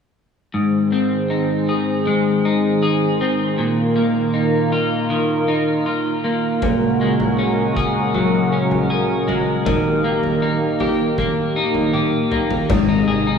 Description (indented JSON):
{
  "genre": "dream pop",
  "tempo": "79 BPM",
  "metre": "4/4",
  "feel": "straight",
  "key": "unclear",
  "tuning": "A4 = 436 Hz",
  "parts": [
    { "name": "warm analog pad", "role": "sustained chords", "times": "0.5-13.4 s", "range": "C3 to C5", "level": "-20 LUFS", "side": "right 2 dB", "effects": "chorus, tremolo" },
    { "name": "electric guitar at the edge of break-up", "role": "arpeggios", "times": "0.5-13.4 s", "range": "Ab2 to Ab4", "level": "-18 LUFS", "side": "left 2 dB", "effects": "lush chorus, digital delay" },
    { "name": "oversized low-tuned drum kit", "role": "drums", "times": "6.6-12.9 s", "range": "crash cymbal, kick drum, toms", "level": "-25 LUFS", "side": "left 1 dB", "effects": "none" },
    { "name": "fat analog bass", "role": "bass", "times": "12.7-13.4 s", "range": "Ab1", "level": "-26 LUFS", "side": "right 1 dB", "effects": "none" }
  ],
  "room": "moderate lush hall reverb, RT60 2.8 s",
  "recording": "rough home demo mix, studio reverb",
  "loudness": "-16 LUFS",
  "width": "side -6 dB against mid",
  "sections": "0.5-12.7 A section",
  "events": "drum fill 11.9-12.7",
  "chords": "0.5 Ab; 3.6 Bbsus4; 6.6 Gbadd9/Bb; 9.7 Eb; 12.7 Ab"
}